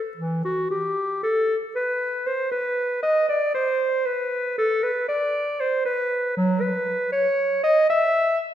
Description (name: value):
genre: classical, baroque-style fantasia for unaccompanied clarinet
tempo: 78 BPM (dotted quarters)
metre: 12/8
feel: rubato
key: unclear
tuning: A4 = 440 Hz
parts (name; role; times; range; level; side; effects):
- clear clarinet; solo; 0.2-8.4 s; E3 to E5; -21 LUFS; equal; none
room: wet recital hall reverb, RT60 1.5 s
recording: heard from further back in the room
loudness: -20 LUFS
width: side -10 dB against mid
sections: 0.0-8.5 A section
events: none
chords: none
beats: | 0.18 0.97 1.75 2.52 | 3.29 4.07 4.83 5.60 | 6.37 7.13 7.89